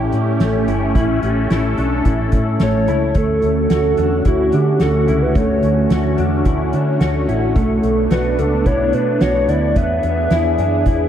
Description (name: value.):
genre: dream pop.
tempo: 109 BPM.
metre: 4/4.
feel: straight.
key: D major.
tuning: A4 = 440 Hz.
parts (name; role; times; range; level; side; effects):
phased analog pad; sustained chords; 0.0-11.1 s; D3 to A4; -21 LUFS; equal; phaser, chorus.
mellow electric guitar; arpeggios; 0.0-11.1 s; A3 to G4; -21 LUFS; equal; ensemble chorus, analog delay.
vintage muted fingered electric bass; bass; 0.0-11.1 s; G1 to D3; -20 LUFS; equal; none.
soft-mallet drum kit; drums; 0.1-11.0 s; hi-hat, kick drum, snare drum; -21 LUFS; equal; none.
warbly nostalgic lead; melody; 2.6-11.1 s; F#4 to E5; -20 LUFS; equal; chorus, analog delay.
room: wet cathedral reverb, RT60 6.9 s.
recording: dreamy mix soaked in reverb.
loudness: -14 LUFS.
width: side -9 dB against mid.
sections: 0.0-3.2 A section; 3.2-11.1 B section.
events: none.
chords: 0.0 A7; 3.2 Dmaj7; 7.6 Bm7; 9.8 E7.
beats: 0.40 | 0.95 1.50 2.05 2.60 | 3.15 3.70 4.25 4.80 | 5.36 5.91 6.46 7.01 | 7.56 8.11 8.66 9.21 | 9.76 10.31 10.86.